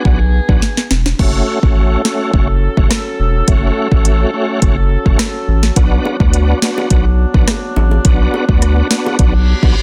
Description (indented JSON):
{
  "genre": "dancehall",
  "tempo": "105 BPM",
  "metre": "4/4",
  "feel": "straight",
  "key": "F# minor",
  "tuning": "A4 = 440 Hz",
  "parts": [
    { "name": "bright tonewheel organ", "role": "accompaniment", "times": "0.0-9.8 s", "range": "A3 to F#4", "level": "-21 LUFS", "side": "equal", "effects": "overdrive, chorus vibrato, fast rotary speaker, sidechain pumping" },
    { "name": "mellow woodwind section", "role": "sustained chords", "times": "0.0-9.8 s", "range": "F#3 to A4", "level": "-25 LUFS", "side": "equal", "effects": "sidechain pumping" },
    { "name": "saturated sub bass", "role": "bass", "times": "0.1-9.7 s", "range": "E1 to D2", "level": "-16 LUFS", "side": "equal", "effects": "none" },
    { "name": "afro-pop drum kit", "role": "drums", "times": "0.1-9.8 s", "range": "crash cymbal, hi-hat, kick drum, rim click, snare drum", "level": "-16 LUFS", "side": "equal", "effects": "soft clipping on snare" },
    { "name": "bongos", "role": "percussion", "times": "6.1-9.2 s", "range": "none", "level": "-25 LUFS", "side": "equal", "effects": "none" },
    { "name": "reverse cymbal", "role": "sound effects", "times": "9.4-9.8 s", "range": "none", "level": "-24 LUFS", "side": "equal", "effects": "none" }
  ],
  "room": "little or no reverb",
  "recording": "dense, heavily limited modern master",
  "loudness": "-13 LUFS",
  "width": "mono",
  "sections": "0.0-1.2 A section; 1.2-9.8 B section",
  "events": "drum fill 0.6-1.2; reverse cymbal 9.4-9.8",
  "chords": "0.0 Bm; 1.2 F#m; 5.8 Bm"
}